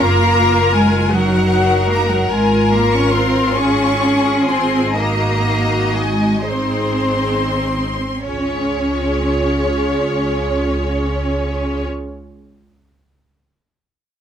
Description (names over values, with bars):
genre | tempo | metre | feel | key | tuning
classical, slow romantic movement for string orchestra | 31-54 BPM (dotted quarters) | 12/8 | rubato | Db major | A4 = 445 Hz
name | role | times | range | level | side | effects
rich studio violin section | melody | 0.0-11.9 s | Ab4 to Eb5 | -22 LUFS | left 3 dB | none
rich studio violin section | second line | 0.0-11.8 s | Db5 to Db6 | -22 LUFS | left 3 dB | none
rich studio viola section | accompaniment | 0.0-11.8 s | Eb4 to Bb4 | -22 LUFS | equal | none
rich studio cello section | bass | 0.0-11.8 s | Gb3 to Db4 | -19 LUFS | right 1 dB | none
rich studio double bass section | bass | 0.0-11.9 s | Gb1 to Db2 | -21 LUFS | right 2 dB | none
room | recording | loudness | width
little or no reverb | close, detailed microphones | -14 LUFS | side -8 dB against mid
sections
0.0-8.3 A section; 8.3-14.2 B section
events
slowing down 0.0-8.3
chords
0.0 Ebm/Gb; 2.3 Db/Ab; 4.9 Ab9; 8.3 Db